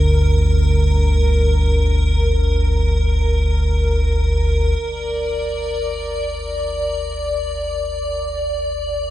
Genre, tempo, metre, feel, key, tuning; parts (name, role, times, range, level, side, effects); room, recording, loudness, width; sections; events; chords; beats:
dark ambient drone; free time; G minor; A4 = 440 Hz
deep rumbling drone; drone; 0.0-9.1 s; G1 to D2; -17 LUFS; equal; built-in reverb, wide subtle chorus
icy glass pad; texture; 0.0-9.1 s; Bb4 to D5; -22 LUFS; equal; chorus, built-in reverb, shimmer reverb
moderate huge ambient reverb, RT60 8.4 s; -16 LUFS; side -14 dB against mid
0.0-4.8 A section; 4.8-9.1 B section
0.0 Gm
free time